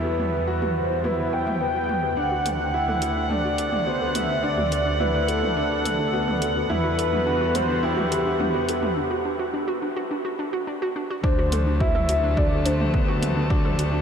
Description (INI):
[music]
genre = piano and strings electronica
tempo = 106 BPM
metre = 4/4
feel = straight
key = unclear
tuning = A4 = 440 Hz
[part]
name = warm velvety synth lead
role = melody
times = 0.0-13.2 s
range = G4 to G5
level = -26 LUFS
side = equal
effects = chorus, ping-pong delay
[part]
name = dark string quartet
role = sustained chords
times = 0.0-14.0 s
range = C3 to F#5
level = -30 LUFS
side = right 1 dB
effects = sidechain pumping
[part]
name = warm concert grand piano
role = riff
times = 0.0-14.0 s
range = B3 to F#4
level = -30 LUFS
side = left 2 dB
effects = ping-pong delay
[part]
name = clear symphonic double bass section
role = bass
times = 0.0-14.0 s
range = D2 to E2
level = -27 LUFS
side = equal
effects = sidechain pumping
[part]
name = warbly dusty pluck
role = arpeggios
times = 0.1-14.0 s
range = D4 to F#5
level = -31 LUFS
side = right 1 dB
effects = chorus, sidechain pumping, ping-pong delay
[part]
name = deep house drum kit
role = drums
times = 0.2-13.9 s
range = hi-hat, toms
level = -32 LUFS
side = right 1 dB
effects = overdrive
[part]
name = electronic kick drum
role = drums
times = 11.2-13.6 s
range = none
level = -23 LUFS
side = equal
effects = overdrive
[sound]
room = wet huge ambient reverb, RT60 8.8 s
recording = dreamy mix soaked in reverb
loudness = -21 LUFS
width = side -7 dB against mid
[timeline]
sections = 0.0-11.2 A section; 11.2-14.0 B section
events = build-up 0.0-11.2; filter sweep on synth arpeggio sound 0.0-11.2; break 9.0-11.2; drop 11.2-14.0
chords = 0.0 Emadd9; 2.2 D7; 6.7 Emadd9; 11.2 D7